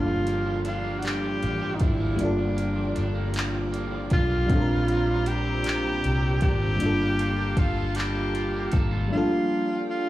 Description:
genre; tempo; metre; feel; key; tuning
slow six-eight R&B; 52 BPM (dotted quarters); 6/8; straight; G minor; A4 = 440 Hz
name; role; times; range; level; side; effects
breathy tenor saxophone; melody; 0.0-10.1 s; D4 to G4; -28 LUFS; right 1 dB; slapback echo
electric guitar at the edge of break-up; second line; 0.0-9.7 s; G2 to A4; -33 LUFS; right 4 dB; slapback echo
FM electric piano with soft pad layer; accompaniment; 0.0-10.1 s; F3 to Bb4; -28 LUFS; left 1 dB; chorus
warm studio string section; sustained chords; 0.0-10.1 s; Bb3 to Bb5; -40 LUFS; left 1 dB; none
vintage muted fingered electric bass; bass; 0.0-9.1 s; G1 to C2; -28 LUFS; equal; none
smooth R&B drum kit; drums; 0.3-8.9 s; handclaps, hi-hat, kick drum; -27 LUFS; equal; none
room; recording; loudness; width
digital ambience; live gig heard through the venue's PA, club ambience; -22 LUFS; side -15 dB against mid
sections
0.0-9.1 A section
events
none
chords
0.0 Gm7; 4.5 Bb69; 6.8 Gm9; 9.1 Gm7

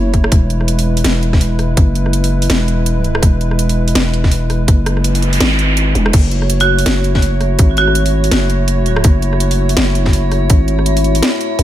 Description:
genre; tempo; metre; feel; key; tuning
half-time drum and bass; 165 BPM; 4/4; swing 58% on 16ths, half-time; F# minor; A4 = 441 Hz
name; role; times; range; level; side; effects
dark analog pad; sustained chords; 0.0-11.6 s; G#3 to C#5; -21 LUFS; right 3 dB; chorus, sidechain pumping
growling 808-style bass; bass; 0.0-11.6 s; E1 to G#1; -14 LUFS; equal; none
drum and bass drum kit; drums; 0.1-11.6 s; crash cymbal, hi-hat, rim click, snare drum; -19 LUFS; equal; overdrive
electronic kick drum; drums; 0.1-10.6 s; none; -11 LUFS; equal; overdrive
noise sweep; sound effects; 4.9-6.1 s; none; -21 LUFS; right 3 dB; none
metallic inharmonic drone; texture; 6.8-11.6 s; E4; -23 LUFS; left 3 dB; chorus, built-in reverb
marimba with hard mallets; melody; 6.6-8.3 s; F#4; -19 LUFS; right 1 dB; ping-pong delay
room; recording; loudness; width
digital ambience; none; -11 LUFS; side -12 dB against mid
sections
0.0-11.6 A section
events
noise sweep 4.9-6.1; kick drops out 5.8-6.1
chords
0.3 E; 6.1 F#m

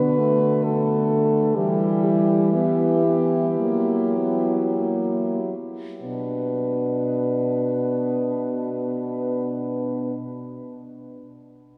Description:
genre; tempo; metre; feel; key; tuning
classical, lyrical piece for horn quartet; 45-67 BPM; 4/4; rubato; B minor; A4 = 443 Hz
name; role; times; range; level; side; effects
warm French horn; melody; 0.0-10.1 s; G4 to B4; -28 LUFS; equal; none
mellow French horn; second line; 0.0-10.2 s; D4 to F#4; -31 LUFS; equal; none
warm French horn; accompaniment; 0.0-10.1 s; G3 to B3; -28 LUFS; equal; none
warm French horn; bass; 0.0-10.1 s; B2 to F#3; -29 LUFS; equal; none
room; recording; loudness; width
wet cathedral reverb, RT60 5.3 s; heard from further back in the room; -22 LUFS; mono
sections
0.0-6.0 A section; 6.0-10.9 B section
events
slowing down 0.0-6.0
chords
0.0 D; 1.6 Em; 3.6 F#7b9; 6.0 Bm

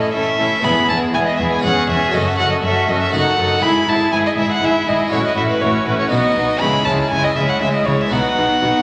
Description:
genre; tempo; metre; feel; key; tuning
classical, baroque-style concerto movement with solo episodes; 120 BPM; 3/4; straight; E major; A4 = 440 Hz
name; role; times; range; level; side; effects
rich violin; melody; 0.0-8.8 s; B4 to B5; -21 LUFS; equal; none
warm chamber violin section; melody; 0.0-8.8 s; E4 to A4; -26 LUFS; equal; none
rich chamber violin section; second line; 0.0-8.8 s; C#4 to G#4; -25 LUFS; equal; none
harpsichord; accompaniment; 0.0-8.8 s; E2 to A4; -28 LUFS; equal; none
warm chamber viola section; accompaniment; 0.0-8.8 s; G#3 to E4; -25 LUFS; equal; none
rich chamber cello section; bass; 0.1-8.7 s; E2 to C#3; -28 LUFS; equal; none
rich chamber double bass section; bass; 0.1-8.7 s; E1 to C#2; -28 LUFS; equal; none
room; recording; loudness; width
wet scoring stage reverb, RT60 1.7 s; none; -17 LUFS; mono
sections
0.0-8.8 A section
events
none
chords
0.0 A; 0.6 E; 1.6 C#m/E; 2.1 F#m; 3.1 D#dim/F#; 3.6 E/G#; 5.1 F#m7/A; 6.1 B; 6.6 C#m; 8.1 B

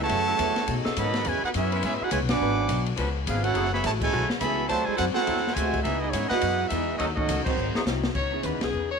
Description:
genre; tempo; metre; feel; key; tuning
jazz, big band swing; 209 BPM; 4/4; swing 61% on 8ths; C# minor; A4 = 437 Hz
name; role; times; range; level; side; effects
clear trumpet section; melody; 0.0-7.8 s; G#3 to D6; -28 LUFS; right 1 dB; none
warm trombone section; second line; 0.0-7.8 s; A2 to F#4; -30 LUFS; right 11 dB; none
upright bass; bass; 0.0-9.0 s; F#1 to B2; -30 LUFS; left 2 dB; none
picked acoustic archtop guitar; accompaniment; 0.1-8.9 s; F#2 to G#4; -35 LUFS; left 14 dB; none
open jazz drum kit; drums; 0.1-8.7 s; crash cymbal, hi-hat, kick drum, ride cymbal, snare drum; -31 LUFS; left 2 dB; none
bright saxophone section; sustained chords; 0.3-7.8 s; E3 to D#5; -35 LUFS; left 2 dB; none
warm saxophone section; melody; 8.2-9.0 s; G#4 to C#5; -29 LUFS; left 5 dB; none
warm concert grand piano; accompaniment; 8.3-8.7 s; B3 to G#4; -34 LUFS; right 11 dB; none
room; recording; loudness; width
light reverb, small room ambience; 1960s-style stereo with parts hard left and right; -23 LUFS; side -5 dB against mid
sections
0.0-8.2 A section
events
band accent 2.3, 4.0, 7.4, 8.6; drum fill 7.6-8.2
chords
0.1 F#m7; 0.7 B13; 1.3 E6; 2.4 G#m7b5; 3.0 C#7b9; 3.5 F#m9; 4.7 D9; 5.8 C#m9; 7.0 D#m7b5; 7.6 G#7b13; 8.2 C#m9

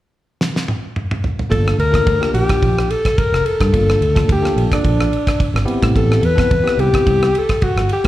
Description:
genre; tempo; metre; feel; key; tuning
electric jazz fusion; 108 BPM; 4/4; swing 53% on 16ths; G dorian; A4 = 440 Hz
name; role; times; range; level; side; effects
damped 70s drum kit; drums; 0.4-8.1 s; kick drum, ride cymbal, rim click, snare drum, toms; -19 LUFS; equal; none
breathy alto saxophone; melody; 1.5-8.1 s; D4 to B4; -18 LUFS; left 2 dB; slapback echo
bell-like tine electric piano; accompaniment; 1.5-7.3 s; Bb3 to A4; -23 LUFS; equal; medium stereo tremolo, slapback echo
fingered electric bass; bass; 1.5-8.1 s; F1 to A2; -17 LUFS; equal; none
room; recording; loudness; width
light reverb, studio reverb; live gig heard through the venue's PA, club reverb; -14 LUFS; side -14 dB against mid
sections
0.0-1.5 A section; 1.5-8.1 B section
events
drum fill 0.4-1.5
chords
0.0 N.C.; 1.5 Gm9; 5.7 Am9

